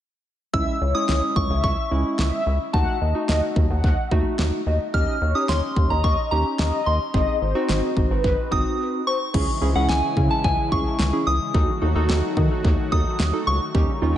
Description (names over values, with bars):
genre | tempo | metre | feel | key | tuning
synth-pop | 109 BPM | 4/4 | straight | C# harmonic minor | A4 = 440 Hz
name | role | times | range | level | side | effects
soft synth bell | melody | 0.5-14.2 s | F#5 to E#6 | -26 LUFS | equal | chorus, dub echo
mellow synth brass | second line | 0.5-9.2 s | B4 to F#5 | -28 LUFS | left 2 dB | chorus, dub echo
warm analog keys | accompaniment | 0.5-14.1 s | G#3 to A4 | -27 LUFS | right 1 dB | chorus, dub echo
rubbery square bass | bass | 0.5-14.1 s | G#1 to D#3 | -22 LUFS | equal | none
pop drum kit | drums | 0.5-13.9 s | crash cymbal, kick drum, snare drum | -24 LUFS | equal | none
brassy analog pad | sustained chords | 9.3-14.2 s | C#3 to F#4 | -29 LUFS | left 2 dB | chorus
room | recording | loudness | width
moderate echo chamber reverb, RT60 2.2 s | echo-heavy mix, nothing above 10.5 kHz | -19 LUFS | side -11 dB against mid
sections
0.5-9.3 A section; 9.3-14.2 B section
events
break 8.8-9.3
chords
0.5 C#m; 2.7 D#dim; 4.9 D#7; 7.1 G#; 9.3 C#m; 11.5 D#dim